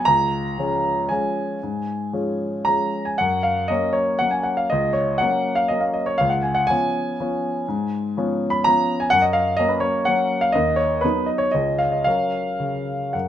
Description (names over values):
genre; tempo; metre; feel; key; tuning
classical, piano waltz; 108-132 BPM; 3/4; rubato; F# major; A4 = 440 Hz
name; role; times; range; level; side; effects
warm grand piano; solo; 0.0-13.3 s; C#2 to B5; -19 LUFS; equal; none
room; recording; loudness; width
moderate large studio reverb, RT60 1.3 s; minimal, uncompressed stereo recording; -19 LUFS; side -10 dB against mid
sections
0.0-13.3 A section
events
none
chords
0.1 C#; 3.2 F#; 6.2 C#7; 9.1 F#; 10.6 B/D#; 11.5 C#5; 12.1 F#